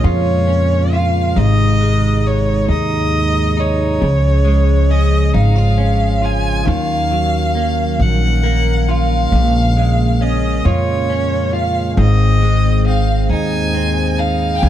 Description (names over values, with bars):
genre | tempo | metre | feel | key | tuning
six-eight pop ballad | 45 BPM (dotted quarters) | 6/8 | straight | Ab mixolydian | A4 = 440 Hz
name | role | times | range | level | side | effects
rich violin | melody | 0.0-14.7 s | Db5 to Ab5 | -20 LUFS | equal | tape echo
direct-recorded clean electric guitar | accompaniment | 0.0-14.7 s | Ab2 to F4 | -20 LUFS | equal | double-tracked left and right
pipe organ, stopped flute | sustained chords | 0.0-14.7 s | C3 to Db5 | -22 LUFS | equal | none
upright bass | bass | 0.0-14.7 s | Ab1 to F2 | -15 LUFS | equal | none
clear studio violin section | second line | 14.6-14.7 s | G5 to Ab5 | -21 LUFS | left 4 dB | none
room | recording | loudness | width
small room ambience | dark, warm production | -13 LUFS | side -11 dB against mid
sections
0.0-14.7 A section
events
none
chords
0.0 Bbm7; 1.4 Ab; 4.0 Db; 6.7 Ebmadd9; 9.3 Bbm7; 12.0 Ab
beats
0.04 | 1.37 2.69 | 4.02 5.34 | 6.67 7.99 | 9.32 10.64 | 11.97 13.30 | 14.63